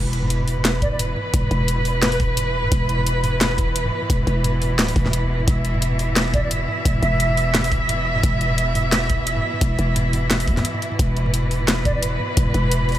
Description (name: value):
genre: half-time drum and bass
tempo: 174 BPM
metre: 4/4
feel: swing 56% on 16ths, half-time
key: unclear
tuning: A4 = 441 Hz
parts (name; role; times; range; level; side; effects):
- bright studio cello section; sustained chords; 0.0-13.0 s; B2 to E5; -24 LUFS; right 2 dB; sidechain pumping
- growling 808-style bass; bass; 0.0-13.0 s; D1 to E2; -22 LUFS; equal; tube saturation
- impact; sound effects; 0.0-1.3 s; none; -38 LUFS; equal; none
- drum and bass drum kit; drums; 0.1-13.0 s; hi-hat, snare drum, toms; -24 LUFS; equal; overdrive, small room ambience
- mellow concert flute; melody; 0.8-2.2, 6.3-7.4, 11.9-12.0 s; B4 to E5; -30 LUFS; right 1 dB; dub echo
- electronic kick drum; drums; 0.8-12.4 s; none; -22 LUFS; equal; small room ambience
room: light reverb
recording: none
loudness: -18 LUFS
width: side -12 dB against mid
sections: 0.0-13.0 A section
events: impact 0.0-1.3; break 10.6-11.0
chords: 0.0 E5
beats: 0.30 0.65 0.99 | 1.34 1.68 2.03 2.37 | 2.72 3.06 3.41 3.75 | 4.10 4.44 4.79 5.13 | 5.48 5.82 6.17 6.51 | 6.86 7.20 7.54 7.89 | 8.23 8.58 8.92 9.27 | 9.61 9.96 10.30 10.65 | 10.99 11.34 11.68 12.03 | 12.37 12.72